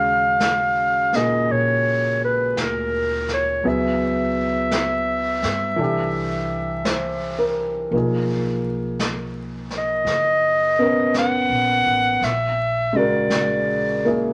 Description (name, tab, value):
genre	jazz ballad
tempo	56 BPM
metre	4/4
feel	swing 68% on 8ths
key	Eb minor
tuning	A4 = 444 Hz
part	breathy clarinet	melody	0.0-14.3 s	Bb4 to F#5	-22 LUFS	equal	none
part	clear upright piano	accompaniment	0.0-14.3 s	Bb2 to C5	-26 LUFS	equal	none
part	upright bass	bass	0.0-14.3 s	F#1 to G2	-33 LUFS	equal	none
part	jazz brush drum kit	drums	0.4-14.3 s	brushed snare drum, hi-hat, snare drum	-32 LUFS	equal	none
room	moderate studio reverb, RT60 0.7 s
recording	vinyl crackle, nothing above 10.8 kHz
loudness	-21 LUFS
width	mono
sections	0.0-14.3 A section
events	none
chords	0.0 Ebm11; 3.6 Dbm7; 5.8 Cadd9; 7.9 Bmaj9; 12.2 Bb7alt